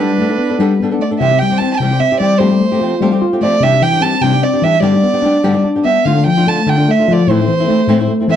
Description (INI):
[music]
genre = mexican folk, mariachi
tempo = 98 BPM (dotted quarters)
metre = 6/8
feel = straight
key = C major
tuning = A4 = 440 Hz
[part]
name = dark violin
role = melody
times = 0.0-8.4 s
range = B4 to A5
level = -16 LUFS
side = right 5 dB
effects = none
[part]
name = mellow trumpet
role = second line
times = 0.0-0.8 s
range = D4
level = -20 LUFS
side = right 5 dB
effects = none
[part]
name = flamenco guitar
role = accompaniment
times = 0.0-8.4 s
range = G2 to A4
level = -18 LUFS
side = left 2 dB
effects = none
[part]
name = tine electric piano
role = arpeggios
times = 0.0-8.4 s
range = A2 to F4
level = -14 LUFS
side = left 3 dB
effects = phaser
[sound]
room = moderate studio reverb, RT60 0.6 s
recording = dark, warm production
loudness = -11 LUFS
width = side -10 dB against mid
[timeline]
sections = 0.0-1.2 A section; 1.2-8.4 B section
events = none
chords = 0.0 Gadd9; 1.2 C; 2.4 Fadd9; 3.6 Cadd9; 4.8 G; 6.0 Dm; 7.3 Am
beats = 0.58 | 1.20 1.81 | 2.42 3.02 | 3.62 4.22 | 4.82 5.43 | 6.05 6.66 | 7.28 7.88